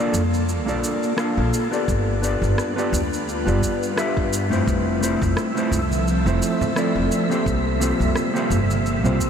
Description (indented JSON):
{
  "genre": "sunset chillout",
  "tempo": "86 BPM",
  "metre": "4/4",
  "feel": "swing 56% on 16ths",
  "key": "F major",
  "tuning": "A4 = 440 Hz",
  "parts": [
    { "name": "mellow electric guitar", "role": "accompaniment", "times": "0.0-9.3 s", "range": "A3 to F5", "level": "-23 LUFS", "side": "left 1 dB", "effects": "auto-pan, low-pass filter, tape echo" },
    { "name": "ethereal airy pad", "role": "sustained chords", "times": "0.0-9.3 s", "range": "C3 to E5", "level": "-26 LUFS", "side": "equal", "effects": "ensemble chorus, built-in reverb, phaser" },
    { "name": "upright bass", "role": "bass", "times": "0.1-9.2 s", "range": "F1 to G2", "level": "-23 LUFS", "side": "equal", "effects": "none" },
    { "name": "smooth R&B drum kit", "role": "drums", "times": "0.1-9.3 s", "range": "rim click, shaker, toms", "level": "-30 LUFS", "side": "equal", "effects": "none" },
    { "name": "electronic kick drum", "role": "drums", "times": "1.9-9.3 s", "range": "none", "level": "-26 LUFS", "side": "equal", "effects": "none" },
    { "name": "wind-like tuned noise texture", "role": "texture", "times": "5.0-9.3 s", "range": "E5 to E6", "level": "-32 LUFS", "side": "equal", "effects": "built-in reverb, analog chorus" },
    { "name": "congas", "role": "percussion", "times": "5.9-9.2 s", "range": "none", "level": "-32 LUFS", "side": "right 3 dB", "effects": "none" }
  ],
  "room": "moderate huge ambient reverb, RT60 7.8 s",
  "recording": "dreamy mix soaked in reverb",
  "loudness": "-19 LUFS",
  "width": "side -7 dB against mid",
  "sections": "0.0-9.3 A section",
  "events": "none",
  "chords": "0.0 Bbmaj7; 1.9 G7; 4.7 Fmaj7; 7.5 C7sus4"
}